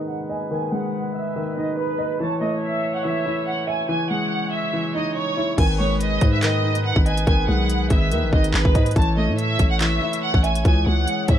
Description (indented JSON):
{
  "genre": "hip hop, drill",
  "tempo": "142 BPM",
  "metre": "4/4",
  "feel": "half-time",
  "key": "G# phrygian",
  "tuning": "A4 = 441 Hz",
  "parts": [
    { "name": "clear studio violin section", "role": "melody", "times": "0.0-11.4 s", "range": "B4 to A5", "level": "-25 LUFS", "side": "right 2 dB", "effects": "low-pass filter, tape echo" },
    { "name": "dark baby grand piano", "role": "accompaniment", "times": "0.0-11.4 s", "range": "D#3 to E5", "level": "-25 LUFS", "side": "left 1 dB", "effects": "low-pass filter" },
    { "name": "mellow brass ensemble", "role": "sustained chords", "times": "0.0-11.4 s", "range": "G#2 to C#5", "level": "-31 LUFS", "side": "left 1 dB", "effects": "low-pass filter" },
    { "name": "growling 808-style bass", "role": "bass", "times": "5.6-11.4 s", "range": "G#1 to A2", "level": "-21 LUFS", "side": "equal", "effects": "none" },
    { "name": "drill drum kit", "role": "drums", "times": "5.6-11.4 s", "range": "crash cymbal, handclaps, hi-hat, kick drum", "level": "-19 LUFS", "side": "equal", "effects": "vintage 12-bit sampler grit" }
  ],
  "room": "small room ambience",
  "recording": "none",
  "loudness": "-19 LUFS",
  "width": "side -10 dB against mid",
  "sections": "0.0-5.6 A section; 5.6-11.4 B section",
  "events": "filter sweep 0.0-5.6",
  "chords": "0.0 G#m; 2.2 A; 3.9 C#madd9; 5.6 G#m; 9.0 A; 10.7 C#m"
}